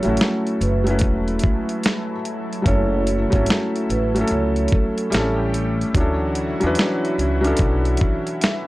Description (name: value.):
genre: lo-fi hip hop.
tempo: 73 BPM.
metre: 4/4.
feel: swing 65% on 16ths.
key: F# minor.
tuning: A4 = 444 Hz.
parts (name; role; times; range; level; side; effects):
vibraphone with soft mallets; melody; 0.0-5.4 s; A4 to C#5; -28 LUFS; right 4 dB; low-pass filter, tape echo.
felt-muted upright piano; accompaniment; 0.0-8.7 s; F#3 to E5; -21 LUFS; left 1 dB; cassette tape, low-pass filter.
lush unison pad; sustained chords; 0.0-8.7 s; E3 to A4; -31 LUFS; equal; chorus, low-pass filter.
dusty soul sampler-style drum kit; drums; 0.0-8.7 s; hi-hat, kick drum, snare drum; -20 LUFS; equal; overdrive, vintage 12-bit sampler grit.
upright bass; bass; 0.1-7.9 s; E1 to E2; -23 LUFS; equal; none.
room: little or no reverb.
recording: dry, gritty hardware recording, transformer saturation.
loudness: -18 LUFS.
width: side -18 dB against mid.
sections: 0.0-8.7 A section.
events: none.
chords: 0.0 F#m7; 5.1 A7; 5.9 Dmaj9.